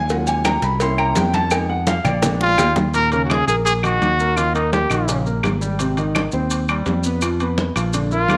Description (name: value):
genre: Afro-Cuban jazz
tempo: 168 BPM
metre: 4/4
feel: straight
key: Eb minor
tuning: A4 = 438 Hz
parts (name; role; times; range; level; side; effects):
- warm concert grand piano; accompaniment; 0.0-8.4 s; Bb2 to C6; -25 LUFS; equal; none
- fingered electric bass; bass; 0.0-8.4 s; Ab1 to F2; -24 LUFS; equal; none
- congas; percussion; 0.1-8.4 s; none; -28 LUFS; equal; none
- cowbell and bongos; percussion; 0.1-2.9 s; none; -28 LUFS; equal; none
- maracas; percussion; 0.1-8.4 s; none; -34 LUFS; equal; none
- agogo bells and timbales; percussion; 0.3-8.4 s; none; -30 LUFS; equal; none
- claves; percussion; 0.5-8.4 s; none; -30 LUFS; equal; none
- warm trumpet; melody; 2.4-5.2, 8.1-8.4 s; Eb4 to Bb4; -21 LUFS; equal; none
room: moderate echo chamber reverb, RT60 1.6 s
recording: none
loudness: -19 LUFS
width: mono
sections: 0.0-2.9 A section; 2.9-8.4 B section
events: grand piano solo 0.0-2.9; drum fill 2.2-2.9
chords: 0.1 Ebm11; 0.8 C7b9; 1.5 Fm7b5; 2.2 Bb7b9; 2.9 Ebm7; 4.4 Eb7; 5.8 Abmaj7; 7.2 Bb5